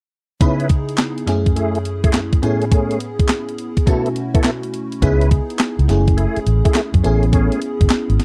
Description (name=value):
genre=R&B, new jack swing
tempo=104 BPM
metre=4/4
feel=swing 66% on 16ths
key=C# minor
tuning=A4 = 441 Hz
part: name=FM electric piano with soft pad layer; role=accompaniment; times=0.4-8.2 s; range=F#2 to G#4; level=-24 LUFS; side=equal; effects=chorus, phaser
part: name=tonewheel organ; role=stabs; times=0.4-7.6 s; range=A3 to B4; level=-24 LUFS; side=equal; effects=chorus vibrato, slow rotary speaker, slapback echo
part: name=clean 12-bit digital drum machine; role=drums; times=0.4-8.2 s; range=handclaps, hi-hat, kick drum, snare drum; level=-19 LUFS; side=equal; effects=none
part: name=vintage muted fingered electric bass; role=bass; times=5.0-8.2 s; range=F#1 to F#2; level=-18 LUFS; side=equal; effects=none
room=little or no reverb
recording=dry, close 1970s-style studio recording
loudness=-17 LUFS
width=mono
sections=0.4-8.2 A section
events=none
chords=0.4 C#m7; 1.3 F#m9; 2.4 Amaj7; 3.9 B7sus4; 5.0 C#m7; 5.9 F#m9; 7.0 Amaj7